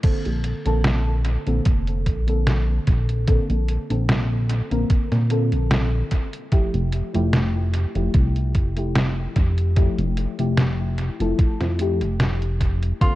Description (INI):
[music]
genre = vaporwave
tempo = 74 BPM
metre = 4/4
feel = swing 54% on 16ths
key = F major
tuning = A4 = 439 Hz
[part]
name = mellow FM electric piano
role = accompaniment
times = 0.0-13.2 s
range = D3 to Bb4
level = -27 LUFS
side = left 2 dB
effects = phaser, wide subtle chorus, tape echo
[part]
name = chorused synth bass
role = bass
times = 0.0-13.2 s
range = F1 to Bb2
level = -22 LUFS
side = equal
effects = none
[part]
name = detuned 8-bit digital drum machine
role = drums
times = 0.0-13.2 s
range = crash cymbal, hi-hat, snare drum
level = -25 LUFS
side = equal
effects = tape echo
[part]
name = electronic kick drum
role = drums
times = 0.0-13.2 s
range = none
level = -19 LUFS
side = equal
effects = none
[part]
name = warm tenor saxophone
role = melody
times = 13.0-13.2 s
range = F4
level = -23 LUFS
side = equal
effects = none
[sound]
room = digital ambience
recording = echo-heavy mix, cassette tape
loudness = -19 LUFS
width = side -16 dB against mid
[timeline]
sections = 0.0-13.2 A section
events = none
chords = 0.0 Bbmaj9; 6.1 Fmaj9